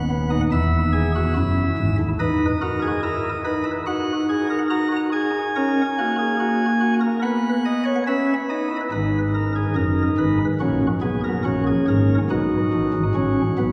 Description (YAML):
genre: classical, baroque-style 4-part fugue for pipe organ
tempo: 71 BPM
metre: 4/4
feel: straight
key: unclear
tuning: A4 = 436 Hz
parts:
  - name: chamber organ, sparkling flutes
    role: solo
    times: 0.0-13.7 s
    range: D#1 to A#5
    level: -21 LUFS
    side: equal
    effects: none
room: wet cathedral reverb, RT60 4.6 s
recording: heard from further back in the room, small room ambience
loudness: -21 LUFS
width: mono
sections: 0.0-8.9 A section; 8.9-13.7 B section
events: none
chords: 0.0 B; 0.5 E; 2.2 B/D#; 3.9 D#m; 5.5 F#; 7.2 B; 8.9 G#m; 10.6 F#/A#; 12.3 B7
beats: 0.53 1.37 | 2.20 3.03 3.87 4.70 | 5.54 6.39 7.23 8.07 | 8.92 9.77 10.62 11.46 | 12.31 13.15